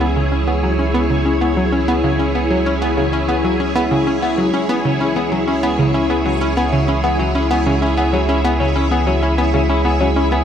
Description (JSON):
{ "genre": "ambient, sequencer-driven space music", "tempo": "96 BPM", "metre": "4/4", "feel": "straight", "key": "C# minor", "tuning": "A4 = 440 Hz", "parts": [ { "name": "string machine, full ensemble", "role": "sustained chords", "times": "0.0-10.4 s", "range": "E4 to C#5", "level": "-19 LUFS", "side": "left 1 dB", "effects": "ensemble chorus, shimmer reverb" }, { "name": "semi-hollow electric guitar", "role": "arpeggios", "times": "0.0-10.4 s", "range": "C#4 to G#4", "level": "-24 LUFS", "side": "moving between left 5 dB and right 1 dB", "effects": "auto-pan, ping-pong delay, shimmer reverb" }, { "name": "analog pluck", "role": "riff", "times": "0.0-10.4 s", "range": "C#3 to C#4", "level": "-19 LUFS", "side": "equal", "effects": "chorus, ping-pong delay, shimmer reverb" }, { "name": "warm sub bass", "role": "bass", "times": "0.0-10.4 s", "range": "C#2", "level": "-21 LUFS", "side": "right 1 dB", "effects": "none" }, { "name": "bubbling stepped-filter texture", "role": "texture", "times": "0.0-10.4 s", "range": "E5", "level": "-32 LUFS", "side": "right 6 dB", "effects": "chorus, built-in reverb, shimmer reverb" } ], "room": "moderate plate reverb, RT60 3.4 s", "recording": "none", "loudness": "-14 LUFS", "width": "side -8 dB against mid", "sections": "0.0-10.4 A section", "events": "fade-in on clean electric guitar 0.0-10.4; fade-in on synth texture 0.0-10.4", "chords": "0.0 C#m", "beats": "0.16 0.79 1.41 | 2.04 2.66 3.29 3.91 | 4.54 5.16 5.79 6.41 | 7.04 7.66 8.29 8.91 | 9.54 10.16" }